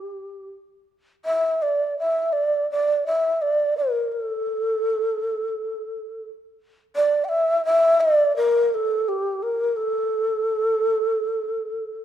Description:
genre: japanese traditional, Japanese chamber music.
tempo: 84 BPM.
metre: 4/4.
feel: uneven beats, rubato.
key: A in sen.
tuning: A4 = 439 Hz.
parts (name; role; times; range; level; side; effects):
breathy mellow long shakuhachi; solo; 0.0-12.0 s; G4 to G5; -20 LUFS; equal; none.
room: light reverb.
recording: dark, warm production.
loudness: -20 LUFS.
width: side -10 dB against mid.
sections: 0.0-12.0 A section.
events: none.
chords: none.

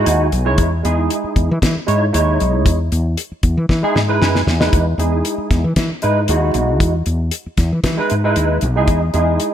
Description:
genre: electric jazz fusion.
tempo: 116 BPM.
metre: 4/4.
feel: straight.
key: E major.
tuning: A4 = 437 Hz.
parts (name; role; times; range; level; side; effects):
barky tine electric piano; accompaniment; 0.0-9.5 s; G#3 to G#5; -18 LUFS; right 2 dB; medium stereo tremolo, ensemble chorus.
woody fretless electric bass; bass; 0.0-9.4 s; B1 to E3; -17 LUFS; equal; none.
damped 70s drum kit; drums; 0.1-9.5 s; hi-hat, kick drum, snare drum; -18 LUFS; left 1 dB; gated reverb.
room: light reverb, small room ambience.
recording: bright 1980s-style digital production.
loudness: -14 LUFS.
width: side -10 dB against mid.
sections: 0.0-9.5 A section.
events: tine electric piano fill 0.0-0.6, 4.0-4.7; drum fill 3.7-4.7.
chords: 0.0 Emaj7.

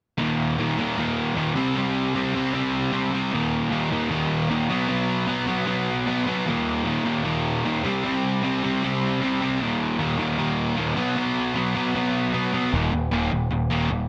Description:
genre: punk.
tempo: 153 BPM.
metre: 4/4.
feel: straight.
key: unclear.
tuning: A4 = 441 Hz.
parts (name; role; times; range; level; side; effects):
crunchy overdriven guitar; riff; 0.2-14.1 s; Eb2 to C4; -27 LUFS; equal; none.
raw garage guitar; riff; 0.2-14.1 s; Eb2 to C4; -27 LUFS; equal; overdrive.
growling picked electric bass; bass; 12.7-14.1 s; Eb1; -28 LUFS; equal; overdrive.
room: moderate studio reverb, RT60 0.8 s.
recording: dense, heavily limited modern master.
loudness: -24 LUFS.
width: mono.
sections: 0.2-12.7 A section; 12.7-14.1 B section.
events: none.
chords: 0.2 Eb5; 1.6 C5; 3.3 Eb5; 4.7 B5; 6.5 Eb5; 7.8 C5; 9.6 Eb5; 11.0 B5; 12.7 Eb5.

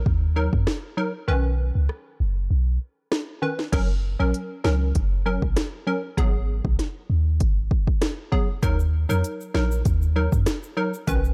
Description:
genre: dancehall.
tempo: 98 BPM.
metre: 4/4.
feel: straight.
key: Eb minor.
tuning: A4 = 440 Hz.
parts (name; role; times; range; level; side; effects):
wavetable chord stab; accompaniment; 0.0-11.3 s; D#3 to B4; -29 LUFS; equal; none.
clean 808-style bass; bass; 0.0-11.3 s; F#1 to Gb2; -24 LUFS; equal; none.
afro-pop drum kit; drums; 0.1-11.2 s; crash cymbal, hi-hat, kick drum, rim click, snare drum; -26 LUFS; equal; overdrive.
egg shaker; percussion; 8.6-11.3 s; none; -46 LUFS; equal; none.
room: digital ambience.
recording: dark, warm production.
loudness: -24 LUFS.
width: mono.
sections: 0.0-3.7 A section; 3.7-11.3 B section.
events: kick muted 1.3-3.7.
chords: 0.0 Ebm; 1.3 Badd9; 3.7 Gb; 6.2 Abm7; 8.6 Ebm.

